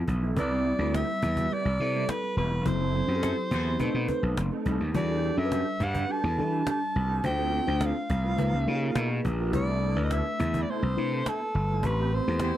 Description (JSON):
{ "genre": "polished 1980s jazz-funk pop", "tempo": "104 BPM", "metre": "4/4", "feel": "straight", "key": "unclear", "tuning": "A4 = 435 Hz", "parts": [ { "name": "FM electric piano with soft pad layer", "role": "accompaniment", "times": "0.0-12.6 s", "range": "F3 to C5", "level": "-32 LUFS", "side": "left 2 dB", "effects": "phaser, analog chorus" }, { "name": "gritty slap bass", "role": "bass", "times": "0.0-12.5 s", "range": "E1 to E3", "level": "-27 LUFS", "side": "equal", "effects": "overdrive" }, { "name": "mellow electric guitar", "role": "riff", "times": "0.1-12.6 s", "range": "F3 to B4", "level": "-36 LUFS", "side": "right 7 dB", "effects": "ensemble chorus" }, { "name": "cajon", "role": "drums", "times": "0.1-12.6 s", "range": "none", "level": "-34 LUFS", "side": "equal", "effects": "none" }, { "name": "breathy soprano saxophone", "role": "melody", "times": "0.4-12.6 s", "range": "A4 to A5", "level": "-31 LUFS", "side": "equal", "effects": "slapback echo" }, { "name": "warm horn section", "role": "second line", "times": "3.2-3.7, 12.4-12.6 s", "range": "E4 to C5", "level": "-36 LUFS", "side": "left 2 dB", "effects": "none" } ], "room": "little or no reverb", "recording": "dry, close 1970s-style studio recording", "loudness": "-25 LUFS", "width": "side -12 dB against mid", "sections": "0.0-12.6 A section", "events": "band accent 2.7-4.9, 11.8-12.6", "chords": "0.4 Cmaj7; 2.7 F#m7b5; 3.8 B7b9; 4.9 Em11; 7.2 Dm7; 8.4 C#13; 9.5 Cmaj13; 11.8 Am9", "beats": "| 0.36 0.93 1.50 2.08 | 2.65 3.23 3.80 4.37 | 4.95 5.52 6.09 6.67 | 7.24 7.81 8.39 8.96 | 9.54 10.11 10.69 11.26 | 11.84 12.41" }